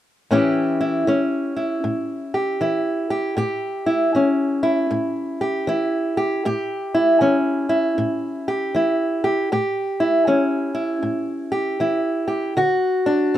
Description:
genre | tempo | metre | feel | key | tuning
blues | 78 BPM | 4/4 | swing 64% on 8ths | A mixolydian | A4 = 440 Hz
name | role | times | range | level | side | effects
fingerpicked old ladder-braced acoustic guitar | solo | 0.3-13.4 s | A2 to G4 | -18 LUFS | equal | none
room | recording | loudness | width
light reverb | minimal, uncompressed stereo recording | -19 LUFS | side -12 dB against mid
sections
0.3-13.4 A section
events
none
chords
0.3 A7; 12.6 D

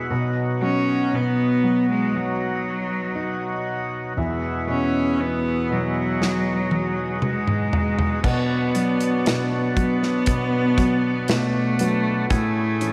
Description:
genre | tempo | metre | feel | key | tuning
pop ballad | 59 BPM | 4/4 | straight | unclear | A4 = 440 Hz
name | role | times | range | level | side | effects
warm concert grand piano | accompaniment | 0.0-12.9 s | E2 to F#3 | -30 LUFS | equal | none
overdriven tonewheel organ | sustained chords | 0.0-12.9 s | A2 to G#4 | -30 LUFS | equal | slow rotary speaker
nylon-string guitar | arpeggios | 0.0-12.9 s | B2 to B4 | -32 LUFS | equal | none
rich cello | melody | 0.6-12.9 s | F#3 to C#4 | -25 LUFS | equal | slapback echo
modern studio drum kit | drums | 6.2-12.9 s | crash cymbal, hi-hat, kick drum, snare drum, toms | -27 LUFS | equal | none
room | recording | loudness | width
wet echo chamber reverb, RT60 2.2 s | none | -22 LUFS | mono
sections
0.0-8.2 A section; 8.2-12.9 B section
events
drum fill 6.2-8.2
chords
0.1 B; 4.2 Eadd9; 8.2 Bm; 12.3 Amaj7

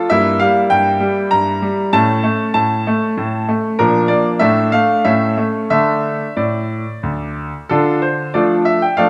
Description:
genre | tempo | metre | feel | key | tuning
classical-period piano sonatina | 89-99 BPM | 3/4 | rubato | D minor | A4 = 441 Hz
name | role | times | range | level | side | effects
bright grand piano | solo | 0.0-9.1 s | D2 to Bb5 | -16 LUFS | equal | none
room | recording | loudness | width
moderate recital hall reverb, RT60 1.5 s | none | -16 LUFS | mono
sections
0.0-7.7 A section; 7.7-9.1 B section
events
none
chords
0.1 Edim/G; 1.9 A; 3.8 Bb; 4.4 Dm/A; 5.1 A; 5.7 D5; 7.7 Dm

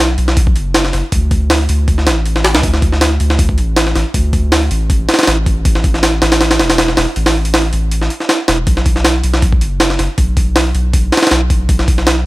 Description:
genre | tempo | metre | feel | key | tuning
drum and bass, jungle | 159 BPM | 4/4 | swing 54% on 16ths | B minor | A4 = 436 Hz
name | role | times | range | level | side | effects
soft dub sub bass | bass | 0.0-12.2 s | E1 to D2 | -15 LUFS | equal | none
jungle sampler-style drum kit | drums | 0.2-12.2 s | hi-hat, kick drum, snare drum | -12 LUFS | equal | overdrive
room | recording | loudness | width
little or no reverb | none | -11 LUFS | side -19 dB against mid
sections
0.0-12.3 A section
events
kick drops out 7.9-8.7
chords
none

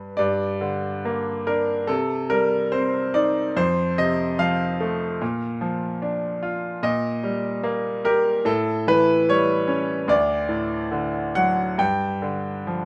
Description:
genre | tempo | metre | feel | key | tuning
classical, lyrical solo piano | 72 BPM | 4/4 | rubato | G minor | A4 = 440 Hz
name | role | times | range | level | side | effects
bright grand piano | solo | 0.0-12.8 s | D2 to G5 | -23 LUFS | equal | none
room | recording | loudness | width
moderate studio reverb, RT60 0.6 s | none | -23 LUFS | mono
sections
0.2-12.8 A section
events
none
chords
0.2 Gm; 1.9 Cm; 3.6 F; 5.2 Bb; 6.8 Eb/Bb; 8.5 A7; 10.1 D; 11.8 G7(no3)

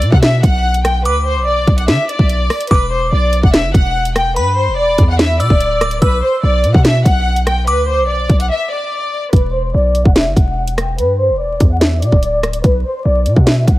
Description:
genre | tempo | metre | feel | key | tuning
hip hop, drill | 145 BPM | 4/4 | half-time | E minor | A4 = 440 Hz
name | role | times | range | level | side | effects
warm symphonic violin section | melody | 0.0-13.8 s | B4 to G5 | -17 LUFS | left 1 dB | low-pass filter
hard-hitting 808-style bass | bass | 0.0-13.8 s | D1 to D3 | -16 LUFS | equal | none
drill drum kit | drums | 0.0-13.8 s | hi-hat, kick drum, rim click, snare drum | -13 LUFS | equal | none
glassy synth bell | second line | 1.1-9.3 s | B5 to E6 | -21 LUFS | equal | chorus, digital delay
room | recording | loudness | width
digital ambience | vinyl crackle | -11 LUFS | side -17 dB against mid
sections
0.0-9.3 A section; 9.3-13.8 B section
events
break 8.5-9.3; filter sweep on violin section 9.3-13.8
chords
0.0 Bm; 2.7 Em7; 6.0 Bm; 9.3 Em7; 12.6 Bm

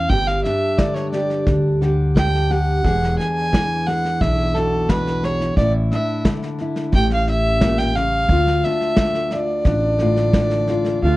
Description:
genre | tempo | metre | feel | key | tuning
acoustic folk duo or small band | 88 BPM | 4/4 | straight | D harmonic minor | A4 = 440 Hz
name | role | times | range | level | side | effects
dark fiddle | melody | 0.0-11.2 s | A4 to G#5 | -21 LUFS | right 1 dB | none
fingerpicked steel-string acoustic guitar | accompaniment | 0.0-11.2 s | D2 to G#4 | -22 LUFS | left 2 dB | none
upright bass | bass | 0.0-11.2 s | E1 to D2 | -21 LUFS | equal | none
soft brush drum kit | drums | 0.1-10.9 s | kick drum, snare drum | -21 LUFS | equal | none
clear clarinet | second line | 11.0-11.2 s | F4 | -20 LUFS | right 3 dB | none
room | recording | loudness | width
moderate studio reverb, RT60 0.6 s | worn, warbling old tape, cassette tape, warbly pitch drift | -16 LUFS | side -18 dB against mid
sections
0.0-11.0 A section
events
fiddle solo 0.0-11.0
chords
0.1 G5; 2.8 E7; 5.6 Asus4; 6.9 A7; 8.3 Dm

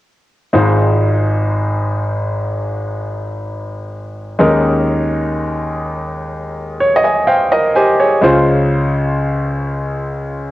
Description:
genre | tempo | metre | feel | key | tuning
pop | 62 BPM | 4/4 | straight | Ab major | A4 = 440 Hz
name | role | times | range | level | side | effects
clear concert grand piano | accompaniment | 0.5-10.5 s | Ab1 to Ab5 | -14 LUFS | equal | cassette tape
room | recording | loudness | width
moderate spring reverb, RT60 1.4 s, small room ambience | home recording on cassette | -13 LUFS | side -16 dB against mid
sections
0.5-10.5 A section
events
grand piano fill 6.3-8.2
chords
0.5 Ab6; 4.4 Eb7sus4; 8.2 Dbmaj7

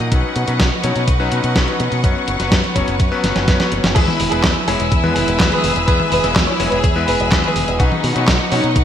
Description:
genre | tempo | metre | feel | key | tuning
italo disco | 125 BPM | 4/4 | straight | unclear | A4 = 440 Hz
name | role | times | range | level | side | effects
bright symphonic string section | sustained chords | 0.0-8.8 s | B4 to E6 | -23 LUFS | equal | shimmer reverb
clear electric grand piano | stabs | 0.0-8.7 s | F#3 to C#5 | -22 LUFS | left 3 dB | ping-pong delay, shimmer reverb
fingered electric bass with an envelope filter | bass | 0.0-8.8 s | E1 to B2 | -22 LUFS | equal | none
clean 12-bit digital drum machine | drums | 0.0-8.8 s | crash cymbal, handclaps, hi-hat, snare drum, toms | -20 LUFS | equal | studio reverb, gated reverb
electronic kick drum | drums | 0.1-8.8 s | none | -17 LUFS | equal | studio reverb
clear studio violin section | melody | 4.0-8.8 s | D#4 to C#5 | -20 LUFS | right 1 dB | ping-pong delay, shimmer reverb
room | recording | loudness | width
moderate lush hall reverb, RT60 2.2 s | bright 1980s-style digital production, vinyl crackle | -14 LUFS | side -9 dB against mid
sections
0.0-4.0 A section; 4.0-8.8 B section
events
drum fill 3.2-4.0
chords
0.1 Badd9; 2.0 F#sus4; 4.0 E; 7.8 Badd9

